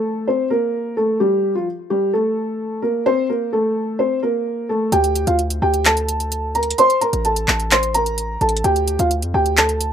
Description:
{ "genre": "hip hop, trap", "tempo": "129 BPM", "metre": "4/4", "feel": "half-time", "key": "D minor", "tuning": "A4 = 440 Hz", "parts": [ { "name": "felt-muted upright piano", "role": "melody", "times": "0.0-9.9 s", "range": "F3 to C6", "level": "-18 LUFS", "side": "equal", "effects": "none" }, { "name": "hard-hitting 808-style bass", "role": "bass", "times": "4.9-9.9 s", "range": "A1 to F2", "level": "-22 LUFS", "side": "equal", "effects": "none" }, { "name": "trap drum kit", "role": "drums", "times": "4.9-9.9 s", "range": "handclaps, hi-hat", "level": "-19 LUFS", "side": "equal", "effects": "none" } ], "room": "light reverb", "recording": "rough home demo mix", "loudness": "-16 LUFS", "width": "side -8 dB against mid", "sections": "0.0-4.9 A section; 4.9-9.9 B section", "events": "none", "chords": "0.0 Am; 1.2 Fadd9 (rootless); 3.1 Am; 4.9 D5; 6.8 Am; 8.6 D5" }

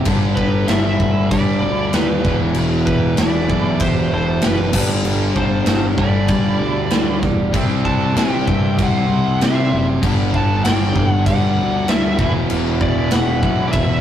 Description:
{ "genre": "hard rock", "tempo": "96 BPM", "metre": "4/4", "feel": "straight", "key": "unclear", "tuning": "A4 = 440 Hz", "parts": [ { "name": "mellow tonewheel organ", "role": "sustained chords", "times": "0.0-14.0 s", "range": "E3 to F#5", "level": "-36 LUFS", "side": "right 1 dB", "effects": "none" }, { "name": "overdriven electric guitar", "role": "riff", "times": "0.0-14.0 s", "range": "E2 to C4", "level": "-24 LUFS", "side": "right 5 dB", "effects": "none" }, { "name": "overdriven semi-hollow guitar", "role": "riff", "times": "0.0-14.0 s", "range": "E2 to C4", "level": "-21 LUFS", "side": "left 4 dB", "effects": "none" }, { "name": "fuzz fingered electric bass", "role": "bass", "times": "0.0-14.0 s", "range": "E1 to C3", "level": "-21 LUFS", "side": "right 1 dB", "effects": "overdrive" }, { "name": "big rock drum kit", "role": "drums", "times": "0.1-13.9 s", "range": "crash cymbal, kick drum, snare drum", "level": "-20 LUFS", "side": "equal", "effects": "none" }, { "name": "smooth overdriven lead guitar", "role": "melody", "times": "0.4-14.0 s", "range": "B4 to A5", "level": "-24 LUFS", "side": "left 1 dB", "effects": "none" }, { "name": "octave-fuzz lead guitar", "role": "second line", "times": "0.4-14.0 s", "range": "G4 to F#5", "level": "-30 LUFS", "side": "right 5 dB", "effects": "distortion" } ], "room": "light reverb", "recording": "rough rehearsal-room recording, tube saturation", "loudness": "-14 LUFS", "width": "side -10 dB against mid", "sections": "0.0-14.0 A section", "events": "none", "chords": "0.1 G; 2.2 Em; 4.7 G; 7.5 C; 10.0 G5; 12.2 E5" }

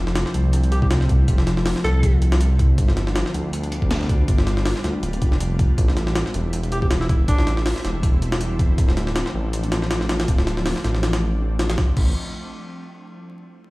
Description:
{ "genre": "drum and bass, jungle", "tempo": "160 BPM", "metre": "4/4", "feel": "swing 55% on 16ths", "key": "A minor", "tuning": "A4 = 440 Hz", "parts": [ { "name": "ethereal airy pad", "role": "sustained chords", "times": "0.0-12.0 s", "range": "F3 to F4", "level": "-30 LUFS", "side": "equal", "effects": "ensemble chorus, built-in reverb, vintage 12-bit sampler grit" }, { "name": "dark detuned saw bass", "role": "bass", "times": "0.0-12.1 s", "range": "D1 to D2", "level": "-21 LUFS", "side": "equal", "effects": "none" }, { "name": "jungle sampler-style drum kit", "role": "drums", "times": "0.1-12.1 s", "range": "crash cymbal, hi-hat, kick drum, snare drum", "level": "-21 LUFS", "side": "equal", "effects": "small room ambience" }, { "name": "breathy alto saxophone", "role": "melody", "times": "0.7-2.2, 6.7-7.6 s", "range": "D4 to A4", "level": "-29 LUFS", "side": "equal", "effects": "dub echo" } ], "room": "light reverb", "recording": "played on a big sound system in a bare room, large studio reverb, vinyl crackle", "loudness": "-18 LUFS", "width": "side -21 dB against mid", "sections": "0.0-11.8 A section; 11.8-13.3 B section", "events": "drop 0.0-11.8", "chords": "0.0 Fmaj7; 2.8 G7; 5.8 Am7; 8.8 Dm7; 11.8 Am7" }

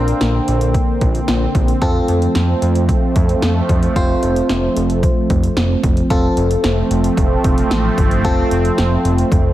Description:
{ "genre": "synth-pop", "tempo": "112 BPM", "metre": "4/4", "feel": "straight", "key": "unclear", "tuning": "A4 = 439 Hz", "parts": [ { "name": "FM electric piano", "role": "accompaniment", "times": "0.0-9.5 s", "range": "C4 to C5", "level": "-21 LUFS", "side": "left 1 dB", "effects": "chorus" }, { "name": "sweeping resonant pad", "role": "sustained chords", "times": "0.0-9.5 s", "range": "D3 to C4", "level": "-19 LUFS", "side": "right 2 dB", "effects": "chorus" }, { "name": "fat analog bass", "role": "bass", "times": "0.0-9.5 s", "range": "F1 to F2", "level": "-18 LUFS", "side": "equal", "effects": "none" }, { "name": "punchy analog drum machine", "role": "drums", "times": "0.1-9.4 s", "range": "hi-hat, kick drum, snare drum", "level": "-18 LUFS", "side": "equal", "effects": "none" } ], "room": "light reverb, digital ambience", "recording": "heavily compressed radio sound", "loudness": "-13 LUFS", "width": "side -14 dB against mid", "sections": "0.0-6.1 A section; 6.1-9.5 B section", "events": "none", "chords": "0.0 Bbadd9; 1.8 F" }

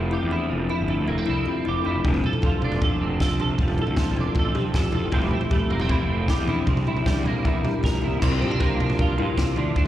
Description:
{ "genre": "math rock and midwest emo", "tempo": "156 BPM", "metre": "4/4", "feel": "straight", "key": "unclear", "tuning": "A4 = 440 Hz", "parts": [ { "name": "twelve-string electric guitar", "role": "accompaniment", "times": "0.0-9.9 s", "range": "F2 to Bb4", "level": "-26 LUFS", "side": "right 4 dB", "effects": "ensemble chorus, slapback echo" }, { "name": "kalimba", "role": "arpeggios", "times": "0.0-9.9 s", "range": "C4 to A4", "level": "-29 LUFS", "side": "left 7 dB", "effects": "slapback echo" }, { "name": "fuzz fingered electric bass", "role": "bass", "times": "0.0-9.9 s", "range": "F1 to C3", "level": "-27 LUFS", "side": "equal", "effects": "overdrive" }, { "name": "compact cocktail drum kit", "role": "drums", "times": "2.0-9.9 s", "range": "crash cymbal, kick drum, snare drum, toms", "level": "-24 LUFS", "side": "equal", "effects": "none" } ], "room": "little or no reverb", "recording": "live gig heard through the venue's PA, recital hall reverb", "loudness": "-20 LUFS", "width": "side -12 dB against mid", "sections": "0.0-8.2 A section; 8.2-9.9 B section", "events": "drum fill 8.0", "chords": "0.0 Am7/F; 2.0 F6; 5.1 Am7/F; 6.7 C9; 8.2 C9sus4" }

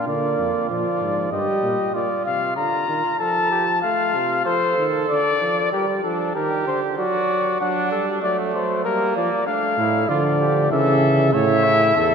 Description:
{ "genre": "classical, imitative canzona for brass ensemble", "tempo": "96 BPM", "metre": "3/4", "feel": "straight", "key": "unclear", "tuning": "A4 = 437 Hz", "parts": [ { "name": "mellow trumpet", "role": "melody", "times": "0.0-12.1 s", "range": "G4 to Bb5", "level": "-21 LUFS", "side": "left 4 dB", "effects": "none" }, { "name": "mellow trumpet", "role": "second line", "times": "0.0-12.1 s", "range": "A3 to C#5", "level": "-25 LUFS", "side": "right 4 dB", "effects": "none" }, { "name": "warm trombone", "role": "accompaniment", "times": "0.0-12.1 s", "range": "Bb2 to Bb3", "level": "-26 LUFS", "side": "right 3 dB", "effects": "none" }, { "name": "dark bass trombone", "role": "bass", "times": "0.0-1.8, 9.8-12.1 s", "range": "E2 to D3", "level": "-22 LUFS", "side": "right 2 dB", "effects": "none" } ], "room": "wet cathedral reverb, RT60 4.0 s", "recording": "minimal, uncompressed stereo recording", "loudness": "-18 LUFS", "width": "side -6 dB against mid", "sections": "0.0-5.7 A section; 5.7-12.1 B section", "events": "none", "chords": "0.0 Bb; 1.3 Eb/G; 1.9 Bb; 3.2 F; 5.1 Dm; 5.7 Gm; 7.0 D/F#; 8.9 Gm; 9.5 Dm/A; 10.7 A/C#; 11.3 A" }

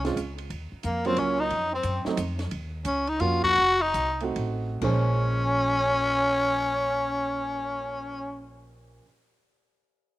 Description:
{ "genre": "jazz, small-group swing and bop", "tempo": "125-179 BPM", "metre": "3/4", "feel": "swing 64% on 8ths", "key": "Bb minor", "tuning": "A4 = 442 Hz", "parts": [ { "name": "growling tenor saxophone", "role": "melody", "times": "0.0-8.5 s", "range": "Bb3 to Gb4", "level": "-25 LUFS", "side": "left 2 dB", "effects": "slapback echo" }, { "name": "warm trumpet", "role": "second line", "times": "0.0-8.5 s", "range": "Bb3 to Gb4", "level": "-33 LUFS", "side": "right 2 dB", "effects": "slapback echo" }, { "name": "warm upright piano", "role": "accompaniment", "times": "0.0-9.0 s", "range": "Bb2 to C5", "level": "-32 LUFS", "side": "right 6 dB", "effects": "slapback echo" }, { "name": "upright bass", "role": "bass", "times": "0.0-9.0 s", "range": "F1 to Gb2", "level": "-31 LUFS", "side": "equal", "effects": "none" }, { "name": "compact cocktail drum kit", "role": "drums", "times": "0.0-7.6 s", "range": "crash cymbal, cymbal swell, hi-hat, kick drum, ride cymbal, snare drum", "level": "-41 LUFS", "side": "equal", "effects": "none" } ], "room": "little or no reverb", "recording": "recorded outdoors, with no room sound", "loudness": "-23 LUFS", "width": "side -16 dB against mid", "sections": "0.5-4.8 A section; 4.8-7.7 B section", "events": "slowing down 2.5-4.8", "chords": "0.0 Bbm9 (rootless); 0.5 Ebm9; 1.5 F7(no3); 2.5 Ebm9; 3.6 F7b9; 4.8 Bbm9" }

